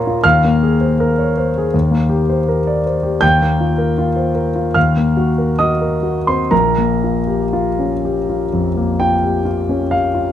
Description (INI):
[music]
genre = classical, impressionist solo piano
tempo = 59-84 BPM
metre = 4/4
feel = rubato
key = Bb dorian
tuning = A4 = 440 Hz
[part]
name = warm grand piano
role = solo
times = 0.0-10.3 s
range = Bb1 to C7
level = -13 LUFS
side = left 1 dB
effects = none
[sound]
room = moderate recital hall reverb, RT60 1.4 s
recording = close, detailed microphones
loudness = -13 LUFS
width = side -10 dB against mid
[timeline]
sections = 0.0-10.3 A section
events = none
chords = 0.2 Bbm9/Eb; 1.7 Cm11/Eb; 3.2 Eb69; 4.8 Ebm6; 6.5 Bbm6